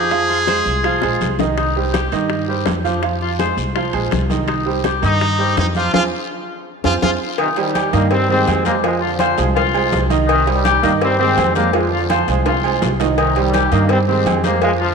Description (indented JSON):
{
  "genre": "latin, salsa",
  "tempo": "166 BPM",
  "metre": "4/4",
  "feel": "straight",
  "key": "C minor",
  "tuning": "A4 = 439 Hz",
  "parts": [
    { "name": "brilliant trumpet", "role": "melody", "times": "0.0-1.4, 5.1-7.1 s", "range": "Eb4 to Ab4", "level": "-20 LUFS", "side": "equal", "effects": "tape echo" },
    { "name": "warm oboe", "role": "second line", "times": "0.0-14.9 s", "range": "Eb4 to C5", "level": "-22 LUFS", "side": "left 8 dB", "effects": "none" },
    { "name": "bright upright piano", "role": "accompaniment", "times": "0.0-14.9 s", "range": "Eb3 to F5", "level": "-20 LUFS", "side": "right 9 dB", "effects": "none" },
    { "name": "upright bass", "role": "bass", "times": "0.0-14.9 s", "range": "Bb1 to G2", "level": "-21 LUFS", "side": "left 1 dB", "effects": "none" },
    { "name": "bongos and cowbell", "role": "percussion", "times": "0.1-14.8 s", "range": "none", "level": "-26 LUFS", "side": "left 11 dB", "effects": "none" },
    { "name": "congas", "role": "percussion", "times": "0.1-14.9 s", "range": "none", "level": "-28 LUFS", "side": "left 2 dB", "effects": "none" },
    { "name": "guiro", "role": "percussion", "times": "0.1-14.9 s", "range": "none", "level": "-35 LUFS", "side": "left 13 dB", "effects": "none" },
    { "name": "timbales and agogo bells", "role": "percussion", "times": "0.1-14.8 s", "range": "none", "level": "-26 LUFS", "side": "right 10 dB", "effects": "none" },
    { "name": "bright trombone section", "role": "melody", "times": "7.4-14.9 s", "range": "C3 to C4", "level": "-20 LUFS", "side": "left 2 dB", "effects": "none" }
  ],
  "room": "wet echo chamber reverb, RT60 2.4 s",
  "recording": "1960s-style stereo with parts hard left and right",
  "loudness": "-14 LUFS",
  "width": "side -5 dB against mid",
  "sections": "0.0-7.4 A section; 7.4-14.9 B section",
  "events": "drum fill 1.0-1.6, 5.9-7.4, 12.5-13.2; band accent 5.9-7.4",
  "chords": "0.1 Fm; 1.6 Cm; 3.0 Fm; 4.5 Cm; 5.9 Fm; 7.4 Cm; 8.8 Fm; 10.3 Cm; 11.7 Fm; 13.2 Cm",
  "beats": "| 0.12 0.48 0.84 1.21 | 1.57 1.94 2.30 2.67 | 3.03 3.39 3.76 4.12 | 4.48 4.85 5.21 5.58 | 5.94 6.30 6.66 7.03 | 7.39 7.75 8.12 8.48 | 8.84 9.20 9.56 9.93 | 10.29 10.65 11.01 11.37 | 11.73 12.10 12.46 12.82 | 13.18 13.54 13.90 14.26 | 14.63"
}